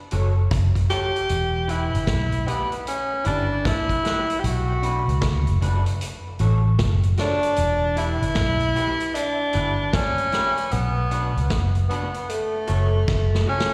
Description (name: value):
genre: roots reggae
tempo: 76 BPM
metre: 4/4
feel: swing 62% on 16ths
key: E dorian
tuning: A4 = 436 Hz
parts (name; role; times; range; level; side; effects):
- electric guitar through a small old amp; accompaniment; 0.1-13.7 s; D4 to C#5; -35 LUFS; equal; lush chorus, tape echo, slapback echo
- vintage muted fingered electric bass; bass; 0.1-13.4 s; E1 to D2; -23 LUFS; equal; none
- vintage drum kit; drums; 0.1-13.7 s; hi-hat, kick drum, rim click, snare drum; -30 LUFS; equal; analog delay, slapback echo
- warm tenor saxophone; melody; 0.9-13.7 s; A3 to G4; -26 LUFS; equal; tape echo, slapback echo
room: light reverb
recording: live gig heard through the venue's PA, recital hall reverb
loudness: -22 LUFS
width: mono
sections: 0.0-13.7 A section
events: drum fill 13.1-13.7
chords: 0.0 F#m; 1.3 Em; 4.4 Bm; 6.0 F#m; 7.6 Em; 10.7 Bm; 12.3 F#m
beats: 0.51 | 1.29 2.08 2.86 3.65 | 4.43 5.22 6.00 6.79 | 7.57 8.36 9.14 9.93 | 10.71 11.49 12.28 13.07